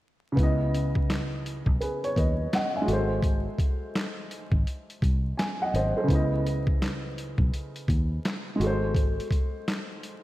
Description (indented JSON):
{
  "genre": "lo-fi hip hop",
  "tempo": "84 BPM",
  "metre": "4/4",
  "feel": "swing 64% on 16ths",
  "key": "C# minor",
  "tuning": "A4 = 441 Hz",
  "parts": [
    { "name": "dark upright piano", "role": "accompaniment", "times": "0.3-10.2 s", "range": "C#3 to G#5", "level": "-29 LUFS", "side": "equal", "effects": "cassette tape" },
    { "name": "fingered electric bass", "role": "bass", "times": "0.4-9.2 s", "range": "G#1 to D#2", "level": "-29 LUFS", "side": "equal", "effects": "none" },
    { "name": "boom bap sampler-style drum kit", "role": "drums", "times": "0.4-10.2 s", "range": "handclaps, hi-hat, kick drum, snare drum", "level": "-27 LUFS", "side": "equal", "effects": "none" }
  ],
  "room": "moderate lush hall reverb, RT60 2.5 s",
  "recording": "dreamy mix soaked in reverb, vinyl crackle",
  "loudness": "-24 LUFS",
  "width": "side -16 dB against mid",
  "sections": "0.4-10.2 A section",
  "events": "none",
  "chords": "0.4 C#m9; 2.9 G#7b9; 6.1 C#m9; 8.6 G#7b9"
}